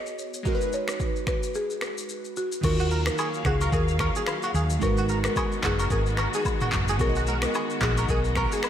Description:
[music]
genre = afrobeats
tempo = 110 BPM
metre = 4/4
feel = swing 58% on 16ths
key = Eb minor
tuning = A4 = 440 Hz
[part]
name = buzzing marimba with medium mallets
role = melody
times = 0.0-8.6 s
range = Gb4 to D#5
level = -31 LUFS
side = left 3 dB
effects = ping-pong delay
[part]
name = glassy digital keys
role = accompaniment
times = 0.0-8.7 s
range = Eb3 to D#5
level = -32 LUFS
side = right 4 dB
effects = chorus
[part]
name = afro-pop drum kit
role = drums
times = 0.1-8.7 s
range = crash cymbal, finger snaps, handclaps, kick drum, rim click, shaker, toms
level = -29 LUFS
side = equal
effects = overdrive
[part]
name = warm studio string section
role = sustained chords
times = 2.6-8.7 s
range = Eb3 to F5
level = -32 LUFS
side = left 2 dB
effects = none
[part]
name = hollow-body short-scale fingered electric bass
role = bass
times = 2.6-8.4 s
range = Gb1 to Eb2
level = -26 LUFS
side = equal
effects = none
[part]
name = agogo bells and woodblock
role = percussion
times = 2.6-8.7 s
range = none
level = -34 LUFS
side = left 4 dB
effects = none
[part]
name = direct-recorded clean electric guitar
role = riff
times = 2.8-8.6 s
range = Gb4 to Bb4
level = -32 LUFS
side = right 5 dB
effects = ensemble chorus, ping-pong delay
[sound]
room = moderate lush hall reverb, RT60 1.9 s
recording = dreamy mix soaked in reverb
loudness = -23 LUFS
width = side -10 dB against mid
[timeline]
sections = 0.0-2.6 A section; 2.6-8.7 B section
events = break 1.5-2.6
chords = 0.5 Abm7; 2.6 Ebmadd9; 4.8 Abm7; 7.0 B6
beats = | 0.45 1.00 1.54 2.09 | 2.63 3.18 3.73 4.27 | 4.82 5.36 5.91 6.45 | 7.00 7.54 8.09 8.63

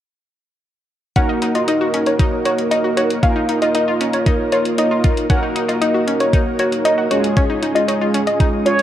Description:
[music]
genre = synth-pop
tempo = 116 BPM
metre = 4/4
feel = straight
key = Eb minor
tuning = A4 = 441 Hz
[part]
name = soft round pluck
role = second line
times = 1.2-8.7 s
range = Db5 to Gb5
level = -20 LUFS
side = left 1 dB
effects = chorus, shimmer reverb, analog delay
[part]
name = mellow synth brass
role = accompaniment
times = 1.2-8.8 s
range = Ab3 to Bb4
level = -19 LUFS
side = right 2 dB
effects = chorus, shimmer reverb
[part]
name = analog pluck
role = arpeggios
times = 1.2-8.8 s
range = Db4 to Gb4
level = -23 LUFS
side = left 2 dB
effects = chorus, shimmer reverb, analog delay
[part]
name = gated 80s digital drum machine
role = drums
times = 1.2-8.8 s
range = hi-hat, kick drum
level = -19 LUFS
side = equal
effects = overdrive
[part]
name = expressive synth lead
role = melody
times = 8.7-8.8 s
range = Db5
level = -14 LUFS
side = right 3 dB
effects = chorus
[sound]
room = moderate plate reverb, RT60 1.5 s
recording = dark, warm production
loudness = -15 LUFS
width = side -11 dB against mid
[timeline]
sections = 1.2-8.8 A section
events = none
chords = 1.2 Ebm7; 3.2 Bbsus4; 5.3 Ebm7; 7.1 Db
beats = | 1.16 1.68 2.20 2.71 | 3.23 3.75 4.26 4.78 | 5.30 5.82 6.33 6.85 | 7.37 7.88 8.40

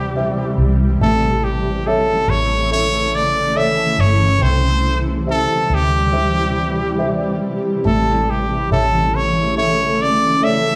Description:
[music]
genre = pop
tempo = 70 BPM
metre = 4/4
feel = straight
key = unclear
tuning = A4 = 440 Hz
[part]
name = brilliant trumpet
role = melody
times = 0.0-10.8 s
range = G4 to E5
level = -21 LUFS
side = equal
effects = none
[part]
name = dark baby grand piano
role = accompaniment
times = 0.0-10.8 s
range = A3 to E5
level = -26 LUFS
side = equal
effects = none
[part]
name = shimmering ambient pad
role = sustained chords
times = 0.0-10.8 s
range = C3 to A3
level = -23 LUFS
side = equal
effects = chorus, built-in reverb, phaser
[part]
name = vintage muted fingered electric bass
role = bass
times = 0.0-10.8 s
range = G1 to D2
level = -22 LUFS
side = equal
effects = none
[sound]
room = wet large studio reverb, RT60 1.1 s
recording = band playing live in one room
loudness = -17 LUFS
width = mono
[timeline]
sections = 0.0-10.8 A section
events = none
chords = 0.0 C; 1.0 A; 4.4 C; 7.9 A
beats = 0.16 | 1.01 1.86 2.71 3.56 | 4.41 5.27 6.12 6.99 | 7.85 8.71 9.57 10.42

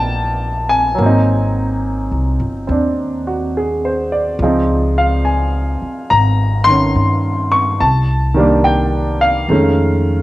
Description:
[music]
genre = jazz ballad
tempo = 70 BPM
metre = 4/4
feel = swing 66% on 8ths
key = unclear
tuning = A4 = 440 Hz
[part]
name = clear baby grand piano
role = accompaniment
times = 0.0-10.2 s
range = Eb3 to Db6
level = -15 LUFS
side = equal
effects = cassette tape
[part]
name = upright bass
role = bass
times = 0.0-10.2 s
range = G1 to G2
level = -17 LUFS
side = equal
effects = none
[sound]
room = moderate spring reverb, RT60 1.6 s, small room ambience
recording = home recording on cassette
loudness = -13 LUFS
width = side -17 dB against mid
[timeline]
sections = 0.0-10.2 A section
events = none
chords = 0.0 Eb69; 1.0 Ab7; 4.4 Dbmaj9; 7.8 Cm7; 9.5 F7alt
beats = 0.14 | 0.99 1.84 2.69 3.54 | 4.40 5.25 6.10 6.96 | 7.81 8.65 9.50

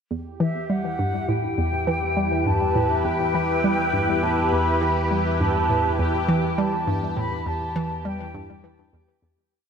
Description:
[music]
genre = ambient, sequencer-driven space music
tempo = 102 BPM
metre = 4/4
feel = straight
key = E minor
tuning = A4 = 439 Hz
[part]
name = lush unison pad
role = sustained chords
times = 0.9-9.5 s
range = E4 to B4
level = -26 LUFS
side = equal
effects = chorus, phaser, shimmer reverb
[part]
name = hollow square pluck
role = riff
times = 0.1-9.4 s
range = E2 to G3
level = -26 LUFS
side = equal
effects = chorus, ping-pong delay
[part]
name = analog drone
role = bass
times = 1.2-9.5 s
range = E2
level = -29 LUFS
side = equal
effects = chorus
[part]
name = bubbling stepped-filter texture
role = texture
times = 0.3-9.5 s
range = G4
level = -32 LUFS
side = left 1 dB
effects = chorus, built-in reverb, shimmer reverb
[part]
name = mellow concert flute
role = melody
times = 0.4-8.6 s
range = E5 to B5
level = -27 LUFS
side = equal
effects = shimmer reverb, ping-pong delay
[sound]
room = wet plate reverb, RT60 2.9 s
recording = none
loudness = -20 LUFS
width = side -7 dB against mid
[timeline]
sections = 0.1-9.5 A section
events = fade-out 6.4-9.5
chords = 0.1 Em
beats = | 0.11 0.70 1.28 1.87 | 2.46 3.05 3.64 4.23 | 4.82 5.40 5.99 6.58 | 7.17 7.76 8.34 8.93

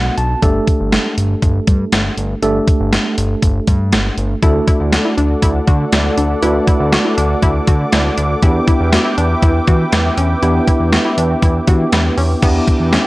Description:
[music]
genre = synth-pop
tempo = 120 BPM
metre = 4/4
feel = straight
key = unclear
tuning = A4 = 437 Hz
[part]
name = tine electric piano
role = accompaniment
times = 0.0-13.1 s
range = A3 to A5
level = -19 LUFS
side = right 1 dB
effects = medium stereo tremolo
[part]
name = fat analog bass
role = bass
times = 0.0-13.0 s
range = G1 to E3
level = -17 LUFS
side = equal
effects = none
[part]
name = gated 80s digital drum machine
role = drums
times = 0.2-13.0 s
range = crash cymbal, hi-hat, kick drum, snare drum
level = -14 LUFS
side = equal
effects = gated reverb, gated reverb snare
[part]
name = warm analog pad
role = sustained chords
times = 4.4-13.1 s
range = A4 to D6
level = -20 LUFS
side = equal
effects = chorus
[part]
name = analog pluck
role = arpeggios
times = 4.4-13.1 s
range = B3 to F#4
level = -22 LUFS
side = left 1 dB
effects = chorus, tape echo
[sound]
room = little or no reverb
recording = dry, gritty hardware recording, transformer saturation, cassette tape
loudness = -12 LUFS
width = side -19 dB against mid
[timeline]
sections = 0.0-12.4 A section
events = tine electric piano fill 0.0-0.4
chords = 0.4 Gsus2; 4.4 D; 8.4 Em7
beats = | 0.43 0.93 1.43 1.93 | 2.43 2.93 3.43 3.93 | 4.43 4.93 5.43 5.93 | 6.43 6.93 7.43 7.93 | 8.43 8.93 9.43 9.93 | 10.43 10.93 11.43 11.93 | 12.43 12.93

